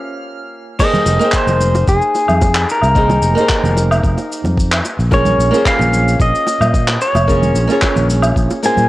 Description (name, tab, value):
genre	sunset chillout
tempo	111 BPM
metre	4/4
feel	swing 53% on 16ths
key	F minor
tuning	A4 = 440 Hz
part	flamenco guitar	accompaniment	0.0-8.9 s	Bb3 to G5	-19 LUFS	right 1 dB	auto-pan, tape echo
part	pedal steel guitar	melody	0.8-8.9 s	Ab4 to Ab5	-17 LUFS	left 1 dB	tape echo
part	electronic kick drum	drums	0.8-8.5 s	none	-16 LUFS	equal	none
part	vintage brush drum kit	drums	0.8-8.9 s	cabasa, crash cymbal, handclaps, woodblock	-20 LUFS	equal	none
part	bongos and congas	percussion	0.8-8.9 s	none	-23 LUFS	right 1 dB	none
part	sustaining fretless electric bass	bass	1.1-8.9 s	F1 to Bb2	-16 LUFS	equal	tube saturation
room	light reverb, small room ambience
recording	worn, warbling old tape, cassette tape, warbly pitch drift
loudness	-11 LUFS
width	side -17 dB against mid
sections	0.8-8.9 A section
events	break 0.0-0.8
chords	0.0 Eb13 (rootless); 0.8 Fm11; 4.8 Bbm9